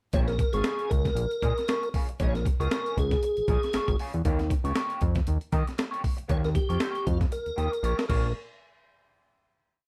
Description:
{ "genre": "funk", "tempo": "117 BPM", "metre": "4/4", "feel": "swing 56% on 16ths", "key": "Bb dorian", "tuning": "A4 = 441 Hz", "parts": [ { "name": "tonewheel organ", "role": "melody", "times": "0.1-8.3 s", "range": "F4 to Eb5", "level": "-32 LUFS", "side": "equal", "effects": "chorus vibrato, slow rotary speaker" }, { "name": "electric guitar at the edge of break-up", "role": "accompaniment", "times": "0.1-8.3 s", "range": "Bb3 to Eb5", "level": "-38 LUFS", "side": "equal", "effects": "wah, warbly pitch drift" }, { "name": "fat analog bass", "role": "bass", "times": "0.1-8.3 s", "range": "Ab1 to Eb3", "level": "-30 LUFS", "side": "equal", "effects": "none" }, { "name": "breakbeat sampler-style drum kit", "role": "drums", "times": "0.1-8.2 s", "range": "crash cymbal, hi-hat, kick drum, snare drum", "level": "-30 LUFS", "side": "equal", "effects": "none" } ], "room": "light reverb", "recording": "none", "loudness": "-27 LUFS", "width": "mono", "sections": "0.1-8.4 groove; 8.4-9.9 final hit", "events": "drum fill 7.3-8.4", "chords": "0.1 Bbm7; 4.2 Eb9; 8.1 Bbm7; 8.4 N.C." }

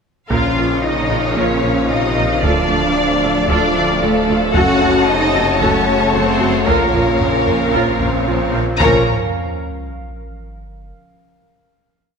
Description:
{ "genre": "cinematic, hybrid orchestral and electronic film score", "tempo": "113 BPM", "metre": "4/4", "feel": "straight", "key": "Bb harmonic minor", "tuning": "A4 = 438 Hz", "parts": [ { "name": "rich symphonic violin section", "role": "melody", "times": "0.3-9.1 s", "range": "A4 to Bb5", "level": "-21 LUFS", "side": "left 4 dB", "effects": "none" }, { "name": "warm symphonic violin section", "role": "second line", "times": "0.3-9.1 s", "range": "Bb4 to A5", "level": "-21 LUFS", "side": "left 4 dB", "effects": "none" }, { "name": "rich symphonic viola section", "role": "accompaniment", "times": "0.3-9.1 s", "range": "F4 to Bb4", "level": "-24 LUFS", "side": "right 2 dB", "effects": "none" }, { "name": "mellow French horn section", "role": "sustained chords", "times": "0.3-9.0 s", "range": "C3 to Db4", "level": "-24 LUFS", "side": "left 5 dB", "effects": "none" }, { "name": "mellow trombone section", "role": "sustained chords", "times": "0.3-9.0 s", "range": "Db3 to Db4", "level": "-25 LUFS", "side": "right 4 dB", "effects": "none" }, { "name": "warbly tape-like pad", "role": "sustained chords", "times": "0.8-9.1 s", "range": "Db3 to Gb5", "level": "-25 LUFS", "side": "equal", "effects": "chorus, built-in reverb" }, { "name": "harp-like synth pluck", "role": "arpeggios", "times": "0.3-8.7 s", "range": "D3 to Bb4", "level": "-26 LUFS", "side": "right 2 dB", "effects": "chorus" }, { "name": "rich studio double bass section", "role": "bass", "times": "0.3-9.1 s", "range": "Gb1 to D2", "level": "-26 LUFS", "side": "right 5 dB", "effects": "none" }, { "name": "rich symphonic cello section", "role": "bass", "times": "0.3-9.1 s", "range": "A3 to Gb4", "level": "-21 LUFS", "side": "right 2 dB", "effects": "none" }, { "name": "snarling distorted saw bass", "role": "bass", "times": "0.3-9.1 s", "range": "D1 to Bb1", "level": "-23 LUFS", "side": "equal", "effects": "distortion" }, { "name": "taiko ensemble", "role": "drums", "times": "0.3-9.8 s", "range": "none", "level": "-24 LUFS", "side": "equal", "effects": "none" }, { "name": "swell and sub drop", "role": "sound effects", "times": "7.8-10.9 s", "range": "none", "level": "-26 LUFS", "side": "equal", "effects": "none" } ], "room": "moderate concert hall reverb, RT60 1.9 s", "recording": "none", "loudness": "-13 LUFS", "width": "side -5 dB against mid", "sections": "0.3-8.8 theme; 8.8-10.9 final chord", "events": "swell 7.8-8.8; impact 8.8-10.9", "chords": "0.3 Bbm; 2.4 Dm; 4.6 Gbm; 6.7 Bbm" }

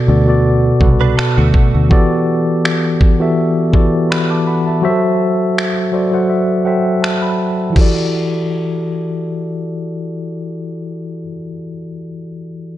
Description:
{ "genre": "contemporary R&B", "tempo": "82 BPM", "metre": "4/4", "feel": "swing 54% on 16ths", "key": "E minor", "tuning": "A4 = 441 Hz", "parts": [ { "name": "mellow tine electric piano", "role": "accompaniment", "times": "0.0-12.8 s", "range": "B2 to D6", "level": "-15 LUFS", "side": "equal", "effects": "medium stereo tremolo" }, { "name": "fingered electric bass", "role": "bass", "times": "0.1-1.9 s", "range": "C2 to D2", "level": "-14 LUFS", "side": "equal", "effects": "none" }, { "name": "dusty soul sampler-style drum kit", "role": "drums", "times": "0.8-7.9 s", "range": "crash cymbal, finger snaps, kick drum", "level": "-15 LUFS", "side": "equal", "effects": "none" }, { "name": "direct-recorded clean electric guitar", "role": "arpeggios", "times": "1.0-1.9 s", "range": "A3 to B4", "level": "-23 LUFS", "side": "right 10 dB", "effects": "analog chorus, tape echo" } ], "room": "light reverb", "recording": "dark, warm production, nothing above 10.7 kHz", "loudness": "-12 LUFS", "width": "side -13 dB against mid", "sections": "0.0-7.8 A section; 7.8-10.7 B section", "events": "tine electric piano fill 5.6-7.8", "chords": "0.0 Bm7; 1.9 Em11; 4.8 F#m7b5; 7.8 Em11" }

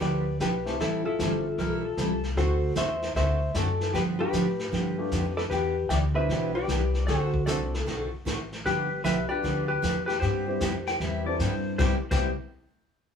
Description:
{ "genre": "country, western swing", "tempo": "153 BPM", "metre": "4/4", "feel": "swing 66% on 8ths", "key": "C major", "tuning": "A4 = 438 Hz", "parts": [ { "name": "clean lap steel guitar", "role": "melody", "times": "0.0-12.3 s", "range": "E4 to G5", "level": "-31 LUFS", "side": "left 2 dB", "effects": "none" }, { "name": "vintage hollow-body jazz guitar", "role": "second line", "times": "0.0-12.3 s", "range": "E4 to D5", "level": "-33 LUFS", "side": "left 2 dB", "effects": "none" }, { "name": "picked steel-string acoustic guitar", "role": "accompaniment", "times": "0.0-12.3 s", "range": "C3 to A4", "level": "-31 LUFS", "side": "right 3 dB", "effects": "none" }, { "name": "upright bass", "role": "bass", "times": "0.0-12.3 s", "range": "G1 to A2", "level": "-30 LUFS", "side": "left 1 dB", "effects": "none" }, { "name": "vintage brush drum kit", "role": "drums", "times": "0.0-12.2 s", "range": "brushed snare drum, crash cymbal, hi-hat, kick drum, snare drum", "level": "-33 LUFS", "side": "left 1 dB", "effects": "none" }, { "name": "warm upright piano", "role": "accompaniment", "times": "0.7-1.4, 4.2-12.3 s", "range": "B2 to A4", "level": "-34 LUFS", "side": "left 2 dB", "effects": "none" }, { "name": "pedal steel guitar", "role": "second line", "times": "1.6-2.3, 10.9-12.3 s", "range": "A4 to G5", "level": "-34 LUFS", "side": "left 4 dB", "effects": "none" } ], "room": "moderate studio reverb, RT60 0.6 s", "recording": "band playing live in one room", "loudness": "-25 LUFS", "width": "side -7 dB against mid", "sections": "0.0-11.8 A section; 11.8-13.2 B section", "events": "none", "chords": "0.0 G7; 0.8 Am7; 2.4 D7; 3.9 G9; 5.5 Em7; 7.1 D7; 8.7 G7; 10.2 Cmaj7" }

